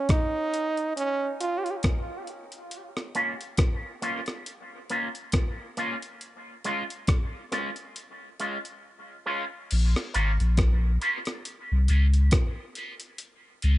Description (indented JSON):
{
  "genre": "dub reggae",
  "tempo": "69 BPM",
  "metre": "4/4",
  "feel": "swing 57% on 16ths",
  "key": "Bb minor",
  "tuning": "A4 = 440 Hz",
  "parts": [
    { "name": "brilliant trombone", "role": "second line", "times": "0.0-1.8 s", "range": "Db4 to F4", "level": "-29 LUFS", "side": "right 2 dB", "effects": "dub echo" },
    { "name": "breakbeat sampler-style drum kit", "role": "drums", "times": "0.1-13.8 s", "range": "crash cymbal, hi-hat, kick drum, rim click", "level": "-26 LUFS", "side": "equal", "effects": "none" },
    { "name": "electric guitar with an envelope filter", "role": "accompaniment", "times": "3.1-13.8 s", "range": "Ab3 to F4", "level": "-31 LUFS", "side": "equal", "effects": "analog chorus, high-pass filter, low-pass filter, dub echo" },
    { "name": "warm sub bass", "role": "bass", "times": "9.7-13.8 s", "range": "Ab1 to Db2", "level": "-20 LUFS", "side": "equal", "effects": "none" }
  ],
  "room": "little or no reverb",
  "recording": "nothing above 10.8 kHz",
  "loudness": "-25 LUFS",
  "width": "side -16 dB against mid",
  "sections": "0.0-9.7 A section; 9.7-13.8 B section",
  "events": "break 0.0-2.7; filter sweep on clean electric guitar 6.2-13.8",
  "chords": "0.0 N.C.; 2.7 Bbm; 6.2 Db; 9.7 Bbm; 13.2 Db",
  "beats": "0.09 0.96 1.84 | 2.71 3.59 4.46 5.34 | 6.21 7.08 7.96 8.83 | 9.70 10.57 11.45 12.32 | 13.19"
}